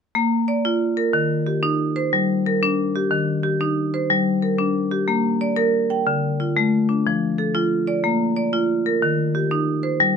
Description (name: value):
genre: southern african traditional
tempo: 122 BPM (dotted quarters)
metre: 12/8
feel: straight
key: Bb major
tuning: A4 = 435 Hz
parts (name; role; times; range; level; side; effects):
- marimba with hard mallets; arpeggios; 0.1-10.2 s; D3 to G5; -18 LUFS; left 1 dB; none
room: light reverb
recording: close, detailed microphones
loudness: -18 LUFS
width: side -6 dB against mid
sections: 0.2-10.2 A section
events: none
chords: 0.2 Bb; 1.1 Eb; 2.1 Gm; 3.1 Eb; 4.1 Gm; 5.1 Bb; 6.1 Dm; 7.1 F; 8.0 Bb; 9.0 Eb